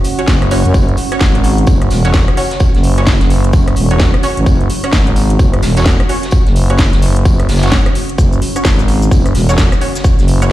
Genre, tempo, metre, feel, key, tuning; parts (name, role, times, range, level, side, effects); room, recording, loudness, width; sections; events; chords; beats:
bass house; 129 BPM; 4/4; swing 61% on 16ths; A4 = 438 Hz
garage drum kit; drums; 0.0-10.5 s; cabasa, hi-hat, rim click, snare drum; -20 LUFS; equal
vintage brush drum kit; drums; 0.0-10.4 s; hi-hat, snare drum, tambourine; -27 LUFS; equal; high-pass filter on hats, high-pass filter on snare, high-pass filter on perc, high-pass filter on room
deep dark ambient pad; texture; 0.0-10.5 s; C#4 to C#6; -21 LUFS; right 2 dB; chorus, built-in reverb, sidechain pumping
orchestra-hit-like synth stab; stabs; 0.2-10.5 s; C#4 to C#5; -22 LUFS; right 1 dB; built-in reverb, sidechain pumping, ping-pong delay
growling FM bass; bass; 0.3-10.5 s; E1 to F#2; -12 LUFS; equal; overdrive, sidechain pumping
electronic kick drum; drums; 0.3-10.2 s; -12 LUFS; equal
small room ambience; played on a big sound system in a bare room, stone room reverb; -9 LUFS; side -15 dB against mid
0.0-10.5 A section
0.0 F#5
0.28 | 0.74 1.21 1.67 2.14 | 2.60 3.07 3.53 4.00 | 4.46 4.93 5.39 5.86 | 6.32 6.79 7.25 7.72 | 8.19 8.65 9.12 9.58 | 10.04 10.51